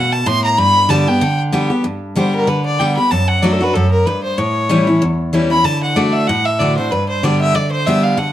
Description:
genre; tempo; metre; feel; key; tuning
bluegrass; 189 BPM; 4/4; swing 56% on 8ths; G major; A4 = 439 Hz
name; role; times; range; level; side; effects
clear fiddle; melody; 0.0-8.3 s; A4 to C6; -16 LUFS; equal; plate reverb
picked steel-string acoustic guitar; accompaniment; 0.0-8.3 s; E2 to G4; -15 LUFS; equal; none
room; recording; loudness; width
moderate studio reverb, RT60 0.8 s; dark, warm production; -13 LUFS; side -12 dB against mid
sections
0.0-1.8 A section; 1.8-8.3 B section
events
fiddle solo 0.0-1.8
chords
0.0 D (rootless); 0.6 G; 3.1 D/F#; 4.4 A7; 5.7 D; 6.9 G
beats
0.27 | 0.58 0.90 1.22 1.53 | 1.85 2.17 2.48 2.80 | 3.12 3.43 3.75 4.07 | 4.38 4.70 5.02 5.33 | 5.65 5.97 6.29 6.60 | 6.92 7.24 7.55 7.87 | 8.19

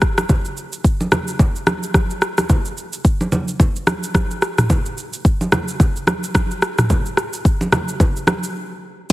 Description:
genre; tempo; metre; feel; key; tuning
afrobeats; 109 BPM; 4/4; swing 58% on 16ths; none; none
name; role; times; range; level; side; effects
afro-pop drum kit; drums; 0.0-9.1 s; crash cymbal, kick drum, rim click, shaker, toms; -17 LUFS; equal; none
congas; percussion; 0.2-9.1 s; none; -22 LUFS; right 1 dB; none
room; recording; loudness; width
light reverb, digital ambience; heavily compressed radio sound, multiband compression; -16 LUFS; side -17 dB against mid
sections
0.3-9.1 A section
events
break 8.6-9.1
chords
none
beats
| 0.29 0.84 1.40 1.95 | 2.50 3.05 3.60 4.15 | 4.70 5.25 5.80 6.35 | 6.90 7.45 8.00 8.55 | 9.10

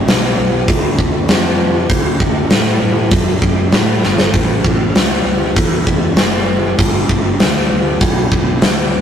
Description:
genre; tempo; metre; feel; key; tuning
blues rock power trio and southern rock; 98 BPM; 4/4; straight; unclear; A4 = 440 Hz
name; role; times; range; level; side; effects
fuzz fingered electric bass; bass; 0.0-9.0 s; F#1 to A2; -18 LUFS; right 1 dB; overdrive
huge arena drum kit; drums; 0.1-8.8 s; hi-hat, kick drum, snare drum; -12 LUFS; equal; none
room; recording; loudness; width
light reverb; rough rehearsal-room recording, tube saturation; -11 LUFS; side -8 dB against mid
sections
0.0-9.0 A section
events
drum fill 4.0-4.3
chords
none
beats
0.07 0.68 1.29 | 1.90 2.51 3.12 3.73 | 4.34 4.95 5.57 6.18 | 6.79 7.40 8.01 8.63

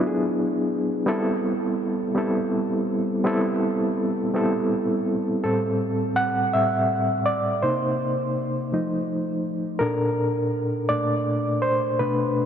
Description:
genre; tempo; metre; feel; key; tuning
R&B; 55 BPM (dotted quarters); 6/8; straight; A dorian; A4 = 440 Hz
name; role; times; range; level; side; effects
overdriven reed electric piano; solo; 0.0-12.5 s; A2 to F#5; -21 LUFS; equal; medium tremolo, diffuse ambient delay
room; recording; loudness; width
wet huge ambient reverb, RT60 4.1 s; dreamy mix soaked in reverb; -21 LUFS; side -8 dB against mid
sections
0.0-5.4 A section; 5.4-12.5 A section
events
reed electric piano solo 5.4-12.5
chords
0.0 E7; 1.1 Am9; 5.4 Am7; 7.6 Cm7; 8.7 F7; 9.8 Bbmaj7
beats
| 1.07 2.16 | 3.25 4.35 | 5.44 6.53 | 7.62 8.71 | 9.80 10.89 | 11.98

